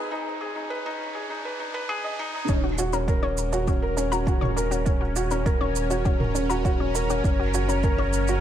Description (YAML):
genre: piano and strings electronica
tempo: 101 BPM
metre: 4/4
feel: straight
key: Eb minor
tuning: A4 = 441 Hz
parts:
  - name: lush unison pad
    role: sustained chords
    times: 0.0-8.4 s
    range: Gb3 to Bb4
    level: -32 LUFS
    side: right 1 dB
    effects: chorus, phaser, sidechain pumping
  - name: felt-muted upright piano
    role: riff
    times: 0.0-8.4 s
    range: Db4 to Eb5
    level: -27 LUFS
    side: left 1 dB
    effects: ping-pong delay
  - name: riser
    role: sound effects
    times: 0.0-2.5 s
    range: none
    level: -36 LUFS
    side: right 3 dB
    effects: none
  - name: analog pluck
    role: arpeggios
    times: 2.5-8.3 s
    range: Db4 to Db5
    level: -33 LUFS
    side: left 2 dB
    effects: chorus, sidechain pumping, ping-pong delay
  - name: warm sub bass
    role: bass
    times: 2.5-8.4 s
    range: Eb1 to Gb1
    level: -28 LUFS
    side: right 1 dB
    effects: sidechain pumping
  - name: electronic kick drum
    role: drums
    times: 2.5-8.0 s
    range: none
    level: -24 LUFS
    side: right 1 dB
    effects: none
  - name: electronic shaker and toms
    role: drums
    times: 2.5-8.4 s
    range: none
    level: -32 LUFS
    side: right 3 dB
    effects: none
room: light reverb, digital ambience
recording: high-pass filter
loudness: -22 LUFS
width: side -10 dB against mid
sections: 0.0-2.5 A section; 2.5-8.4 B section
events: build-up 0.0-2.5; riser 0.0-2.5; filter sweep 0.0-2.5; drop 2.5-8.4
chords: 0.0 Abm; 2.5 Ebm7; 7.2 Gb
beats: | 0.12 0.71 1.30 1.90 | 2.49 3.09 3.68 4.28 | 4.87 5.46 6.06 6.65 | 7.25 7.84